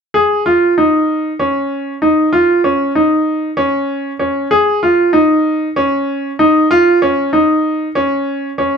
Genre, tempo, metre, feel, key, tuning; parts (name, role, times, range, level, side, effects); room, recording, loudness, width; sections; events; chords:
progressive instrumental, progressive; 192 BPM (eighths); 7/8; straight; A4 = 440 Hz
bright baby grand piano; solo; 0.1-8.8 s; Db4 to Ab4; -11 LUFS; equal
wet studio reverb, RT60 0.7 s; band playing live in one room; -11 LUFS; side -6 dB against mid
0.1-4.5 A section; 4.5-8.8 B section